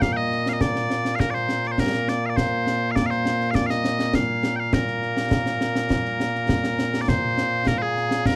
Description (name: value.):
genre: scottish traditional, Scottish pipe music.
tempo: 102 BPM.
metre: 4/4.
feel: straight.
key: Bb major.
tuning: A4 = 440 Hz.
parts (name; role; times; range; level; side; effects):
loud bright bagpipes; melody; 0.0-8.4 s; Bb2 to G5; -25 LUFS; equal; none.
concert snare drum and concert bass drum; drums; 0.0-8.4 s; none; -27 LUFS; equal; none.
room: light reverb.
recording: dry, close 1970s-style studio recording.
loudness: -23 LUFS.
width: mono.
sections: 0.0-7.1 A section; 7.1-8.4 B section.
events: none.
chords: none.